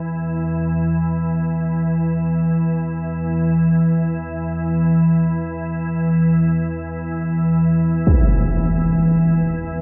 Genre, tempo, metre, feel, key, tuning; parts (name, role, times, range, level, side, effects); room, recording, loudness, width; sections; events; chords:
dark ambient drone; free time; A4 = 440 Hz
organ-like drone; drone; 0.0-9.8 s; E2 to E3; -19 LUFS; equal; ensemble chorus, built-in reverb
impact; percussion; 8.1-8.3 s; -21 LUFS; equal; low-pass filter on sfx
wet cathedral reverb, RT60 4.8 s; dark, warm production; -19 LUFS; mono
0.0-9.8 A section